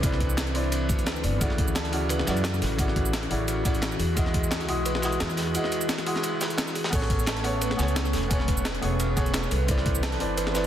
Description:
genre	liquid drum and bass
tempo	174 BPM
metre	4/4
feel	swing 54% on 16ths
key	A major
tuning	A4 = 440 Hz
part	bright concert grand piano	accompaniment	0.0-10.7 s	C#3 to D#6	-31 LUFS	equal	ping-pong delay
part	airy breathy pad	sustained chords	0.0-10.7 s	C#3 to B4	-33 LUFS	left 2 dB	chorus, sidechain pumping
part	upright bass	bass	0.0-10.7 s	E1 to F#2	-29 LUFS	equal	none
part	breakbeat sampler-style drum kit	drums	0.0-10.7 s	cabasa, crash cymbal, hi-hat, snare drum	-32 LUFS	equal	none
part	crunchy breakbeat drum kit	drums	0.0-10.6 s	ride cymbal, snare drum	-34 LUFS	equal	high-pass filter on cymbals, high-pass filter on snare, high-pass filter on room
part	electronic kick drum	drums	0.0-4.4, 6.9-9.9 s	none	-26 LUFS	equal	none
part	kalimba	arpeggios	0.6-10.5 s	G#4 to A5	-36 LUFS	right 4 dB	ping-pong delay
room	light reverb, studio reverb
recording	dense, heavily limited modern master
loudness	-23 LUFS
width	side -10 dB against mid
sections	0.0-10.7 A section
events	none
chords	0.0 Cmaj9; 1.4 Dmaj9; 4.0 Emaj9; 6.9 Amaj9; 9.5 Cmaj9

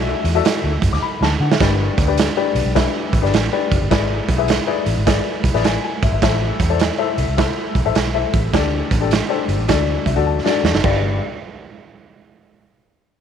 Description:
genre	uptempo 1960s-style soul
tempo	104 BPM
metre	4/4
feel	swing 65% on 8ths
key	G major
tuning	A4 = 441 Hz
part	warm upright piano	accompaniment	0.0-11.2 s	G2 to D6	-21 LUFS	left 13 dB	none
part	vintage muted fingered electric bass	bass	0.0-11.2 s	F#1 to D3	-20 LUFS	equal	none
part	raw garage drum kit	drums	0.2-11.0 s	crash cymbal, hi-hat, kick drum, snare drum	-19 LUFS	right 4 dB	none
room	light reverb, small room ambience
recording	1960s-style stereo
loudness	-15 LUFS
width	side -8 dB against mid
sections	0.0-1.6 A section; 1.6-10.8 B section; 10.8-13.2 C section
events	drum fill 1.0-1.6, 10.3-10.8; upright piano fill 5.4-6.2, 9.7-10.8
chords	0.0 Dadd9; 1.6 G; 3.9 E7/G#; 6.2 Am; 8.5 Dsus4; 9.7 D; 10.8 G

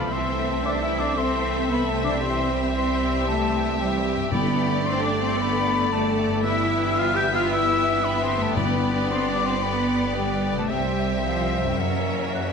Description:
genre	cinematic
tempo	113 BPM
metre	4/4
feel	straight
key	G major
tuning	A4 = 440 Hz
part	rich symphonic violin section	melody	0.0-12.5 s	D5 to E5	-31 LUFS	left 4 dB	none
part	clear studio violin section	second line	0.0-12.5 s	G4 to A#4	-35 LUFS	left 4 dB	none
part	dark clarinet	second line	0.0-12.5 s	G4 to C5	-34 LUFS	left 5 dB	none
part	hollow concert flute	second line	0.0-12.3 s	F5 to G6	-28 LUFS	left 2 dB	none
part	warm oboe	second line	0.0-12.5 s	D5 to F#5	-34 LUFS	left 1 dB	none
part	clear symphonic viola section	accompaniment	0.0-12.5 s	A3 to C#4	-31 LUFS	right 2 dB	none
part	bright trombone section	sustained chords	0.0-12.5 s	C3 to A#3	-33 LUFS	right 4 dB	none
part	concert harp	arpeggios	0.0-12.5 s	F#2 to A#4	-36 LUFS	left 10 dB	none
part	rich symphonic cello section	bass	0.0-12.3 s	F3 to G4	-28 LUFS	right 3 dB	none
part	rich symphonic double bass section	bass	0.0-12.5 s	G1 to F#2	-30 LUFS	right 4 dB	none
part	dark French horn section	sustained chords	0.1-12.3 s	F3 to G4	-30 LUFS	left 4 dB	none
part	timpani	percussion	4.3-5.1, 8.6-9.3 s	G2	-30 LUFS	left 1 dB	none
room	wet scoring stage reverb, RT60 1.9 s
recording	none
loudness	-20 LUFS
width	side -6 dB against mid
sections	0.0-12.5 A section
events	none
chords	0.1 Am/C; 2.2 C; 4.3 Gadd9; 6.5 Em/G; 8.6 G; 10.7 C; 11.8 F#7

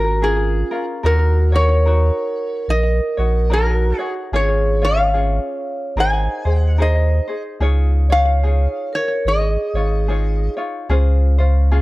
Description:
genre	Hawaiian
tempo	73 BPM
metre	4/4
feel	swing 60% on 8ths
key	Db major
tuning	A4 = 441 Hz
part	metal-body resonator slide guitar	melody	0.0-10.5 s	Ab4 to Ab5	-21 LUFS	left 1 dB	slapback echo
part	vibraphone with hard mallets	second line	0.0-10.5 s	F4 to Eb5	-25 LUFS	right 3 dB	none
part	ukulele	accompaniment	0.0-11.8 s	Db4 to Db5	-26 LUFS	left 2 dB	none
part	warm sub bass	bass	0.0-11.8 s	Ab1 to Eb2	-16 LUFS	equal	none
room	little or no reverb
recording	dry, close 1970s-style studio recording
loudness	-15 LUFS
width	side -19 dB against mid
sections	0.0-10.9 A section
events	none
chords	0.0 Db6; 1.0 Ebm7; 4.3 Db/Ab; 6.0 Abadd9; 7.6 Dbadd9; 10.9 Dbmaj7

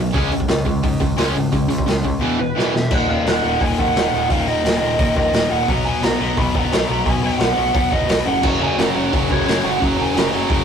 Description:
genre	punk rock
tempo	174 BPM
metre	4/4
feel	straight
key	Eb minor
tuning	A4 = 438 Hz
part	cranked stack guitar	riff	0.0-10.6 s	Eb2 to Db4	-21 LUFS	left 5 dB	overdrive
part	distorted electric guitar	riff	0.0-2.9, 8.4-10.6 s	E2 to Db4	-22 LUFS	right 5 dB	overdrive
part	growling picked electric bass	bass	0.0-10.6 s	Eb1 to Ab2	-26 LUFS	equal	overdrive
part	raw garage drum kit	drums	0.1-10.6 s	crash cymbal, hi-hat, kick drum, snare drum	-20 LUFS	equal	none
part	lead guitar through a small cranked amp	melody	2.4-10.5 s	B4 to B5	-22 LUFS	right 4 dB	overdrive, digital delay
room	light reverb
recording	rough rehearsal-room recording, warm saturation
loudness	-16 LUFS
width	side -7 dB against mid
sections	0.0-2.9 A section; 2.9-10.6 B section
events	drum fill 2.6-2.9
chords	0.2 Db5; 2.2 E5; 2.9 Ebm; 5.7 B5; 8.3 Gb

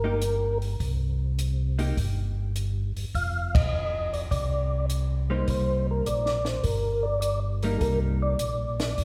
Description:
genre	soul jazz organ trio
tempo	103 BPM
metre	4/4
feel	swing 69% on 8ths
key	C minor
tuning	A4 = 439 Hz
part	percussive tonewheel organ	melody	0.0-9.0 s	A4 to F5	-31 LUFS	equal	slow rotary speaker, chorus vibrato
part	vintage hollow-body jazz guitar	accompaniment	0.0-8.4 s	G3 to G4	-35 LUFS	equal	none
part	tonewheel organ	bass	0.0-9.0 s	F1 to C2	-30 LUFS	equal	chorus vibrato, slow rotary speaker
part	compact cocktail drum kit	drums	0.2-9.0 s	hi-hat, kick drum, ride cymbal, snare drum	-32 LUFS	equal	none
room	moderate concert hall reverb, RT60 2.0 s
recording	recorded in a church or concert hall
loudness	-27 LUFS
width	mono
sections	0.0-9.0 A section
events	band accent 3.4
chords	0.0 C5; 3.1 F5; 5.5 Cm7

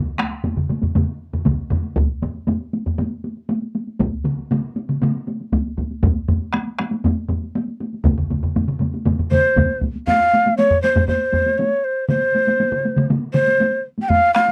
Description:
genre	japanese traditional, taiko drum ensemble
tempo	119 BPM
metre	4/4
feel	straight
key	unclear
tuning	A4 = 440 Hz
part	taiko ensemble	percussion	0.1-14.5 s	none	-26 LUFS	equal	none
part	taiko ensemble	percussion	0.2-14.5 s	none	-24 LUFS	equal	none
part	taiko ensemble	percussion	0.2-13.5 s	none	-25 LUFS	equal	none
part	taiko ensemble	percussion	1.5-9.9 s	none	-24 LUFS	equal	none
part	breathy mellow shakuhachi	melody	9.3-14.5 s	C5 to G5	-18 LUFS	equal	none
room	little or no reverb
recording	dry, close 1970s-style studio recording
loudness	-20 LUFS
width	mono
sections	0.0-10.1 A section; 10.1-14.5 B section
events	none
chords	none

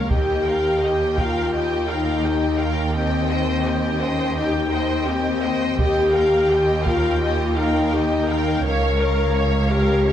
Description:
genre	cinematic, epic orchestral film score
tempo	84 BPM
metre	4/4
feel	straight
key	Eb mixolydian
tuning	A4 = 440 Hz
part	warm studio violin section	melody	0.0-10.1 s	Db5 to G5	-29 LUFS	left 2 dB	none
part	warm symphonic violin section	second line	0.0-10.1 s	Db5 to G5	-29 LUFS	equal	none
part	warm symphonic viola section	accompaniment	0.0-10.1 s	G4 to Db5	-29 LUFS	right 2 dB	none
part	mellow French horn section	sustained chords	0.0-10.1 s	Bb3 to Bb4	-21 LUFS	left 3 dB	none
part	dark symphonic double bass section	bass	0.0-10.1 s	Db2 to Eb2	-25 LUFS	right 2 dB	none
part	rich symphonic cello section	bass	0.0-10.1 s	Db2 to Eb2	-27 LUFS	right 2 dB	none
part	solo taiko drums	drums	0.1-1.5, 5.8-7.2 s	none	-25 LUFS	right 1 dB	none
room	moderate scoring stage reverb, RT60 1.6 s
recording	none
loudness	-18 LUFS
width	side -10 dB against mid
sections	0.0-10.1 A section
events	none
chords	0.1 Ebadd9; 2.9 Cm/Eb; 5.8 Ebadd9; 8.6 Bbm/Db

